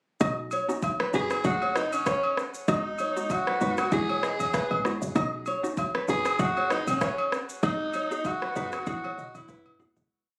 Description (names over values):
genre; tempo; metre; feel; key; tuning
afrobeats; 97 BPM; 4/4; swing 55% on 16ths; B mixolydian; A4 = 440 Hz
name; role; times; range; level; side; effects
hollow square pluck; accompaniment; 0.2-10.0 s; G#3 to G#4; -35 LUFS; equal; chorus
nylon-string guitar; riff; 0.2-9.7 s; B4 to D#5; -36 LUFS; equal; digital delay
woody log drum bass; bass; 0.2-10.1 s; E1 to B1; -36 LUFS; equal; none
deep house drum kit; drums; 0.2-10.1 s; kick drum, rim click, shaker, toms; -34 LUFS; equal; vintage 12-bit sampler grit
agogo bells and woodblock; percussion; 0.2-9.8 s; none; -34 LUFS; equal; none
raspy alto saxophone; melody; 1.1-9.8 s; C#4 to G#4; -33 LUFS; equal; digital delay
room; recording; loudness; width
moderate studio ambience, RT60 0.5 s; recorded on a phone in the room, studio ambience, compression; -28 LUFS; mono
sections
0.2-10.1 verse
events
fade-out 7.6-10.1; drum fill 8.9-10.1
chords
0.2 Badd9; 1.4 F#madd9; 2.7 G#m7; 3.9 Eadd9; 5.2 Badd9; 6.4 F#madd9; 7.6 G#m7; 8.9 Eadd9